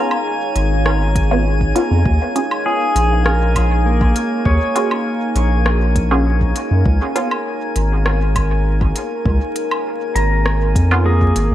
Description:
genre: ambient dub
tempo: 100 BPM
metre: 4/4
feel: straight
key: unclear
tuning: A4 = 440 Hz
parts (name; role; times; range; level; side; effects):
- deep dark ambient pad; sustained chords; 0.0-11.5 s; Eb4 to F5; -23 LUFS; equal; chorus, built-in reverb
- pedal steel guitar; arpeggios; 0.0-11.5 s; Bb3 to Bb5; -22 LUFS; equal; dub echo
- filtered dub chord stab; stabs; 0.0-7.3, 10.9-11.5 s; Cb4 to Ab4; -23 LUFS; right 1 dB; phaser, lush chorus, dub echo
- drifting glass-harmonics texture; texture; 0.0-11.5 s; Ab5; -27 LUFS; equal; chorus, built-in reverb
- organic electronic drum kit; drums; 0.1-11.5 s; hi-hat, rim click, woodblock; -25 LUFS; equal; small room ambience, dub echo
- round analog bass; bass; 0.6-11.5 s; Ab1 to Gb2; -15 LUFS; equal; none
- electronic kick drum; drums; 1.2-11.3 s; none; -19 LUFS; equal; small room ambience
room: light reverb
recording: vinyl crackle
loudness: -14 LUFS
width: side -12 dB against mid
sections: 0.0-11.5 A section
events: none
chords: 0.0 Db7; 2.1 Ebm11; 6.9 Db7

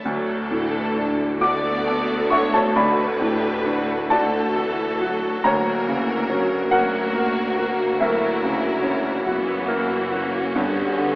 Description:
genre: classical, romantic movement for piano and orchestra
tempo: 42-48 BPM (dotted quarters)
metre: 12/8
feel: rubato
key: D major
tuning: A4 = 441 Hz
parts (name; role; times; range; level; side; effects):
- clear baby grand piano; melody; 0.0-11.2 s; D2 to D6; -22 LUFS; equal; none
- clear symphonic violin section; melody; 0.0-10.1 s; E4 to D5; -29 LUFS; equal; none
- rich symphonic violin section; second line; 0.0-11.2 s; C#4 to A#4; -28 LUFS; equal; none
- rich studio viola section; accompaniment; 0.0-11.2 s; D3 to B3; -26 LUFS; equal; none
- mellow French horn section; sustained chords; 0.0-11.2 s; A3 to G4; -28 LUFS; equal; none
- clear symphonic cello section; bass; 0.0-11.2 s; D2 to G2; -31 LUFS; equal; none
- clear symphonic double bass section; bass; 0.0-11.2 s; F#1 to D2; -34 LUFS; right 1 dB; none
room: wet scoring stage reverb, RT60 2.0 s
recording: recorded in a church or concert hall, AM radio sound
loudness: -19 LUFS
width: side -23 dB against mid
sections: 0.0-11.2 A section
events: none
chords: 0.0 D; 5.4 F#7/D; 10.6 G

